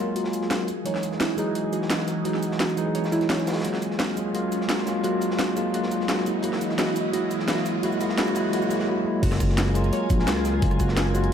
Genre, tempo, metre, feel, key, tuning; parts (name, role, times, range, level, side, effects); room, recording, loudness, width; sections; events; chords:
liquid drum and bass; 172 BPM; 4/4; straight; F# major; A4 = 440 Hz
bell-like tine electric piano; accompaniment; 0.0-11.3 s; E3 to F#4; -26 LUFS; equal; medium stereo tremolo, tape echo
airy breathy pad; sustained chords; 0.0-11.3 s; E3 to G#5; -32 LUFS; right 1 dB; chorus, phaser, sidechain pumping
harp-like synth pluck; arpeggios; 0.0-11.3 s; E4 to C#5; -31 LUFS; right 1 dB; chorus, ping-pong delay
riser; sound effects; 1.2-8.9 s; -35 LUFS; right 1 dB
crunchy breakbeat drum kit; drums; 0.2-11.2 s; hi-hat, snare drum; -35 LUFS; equal; high-pass filter on hats, high-pass filter on snare, high-pass filter on room
drum and bass drum kit; drums; 0.2-11.3 s; cabasa, crash cymbal, hi-hat, rim click, snare drum; -30 LUFS; equal; overdrive
smooth synth bass; bass; 9.2-11.3 s; F#1 to C#2; -24 LUFS; equal
electronic kick drum; drums; 9.2-10.9 s; -23 LUFS; equal; overdrive
moderate plate reverb, RT60 1.6 s, digital ambience; -22 LUFS; side -8 dB against mid
0.0-9.2 A section; 9.2-11.3 B section
build-up 0.0-9.2; filter sweep on synth pluck 0.0-9.2; riser 1.2-8.9; drop 9.2-11.3
0.0 F#maj9; 0.7 Emaj9; 3.6 F#maj9; 6.3 Emaj9; 9.2 F#maj9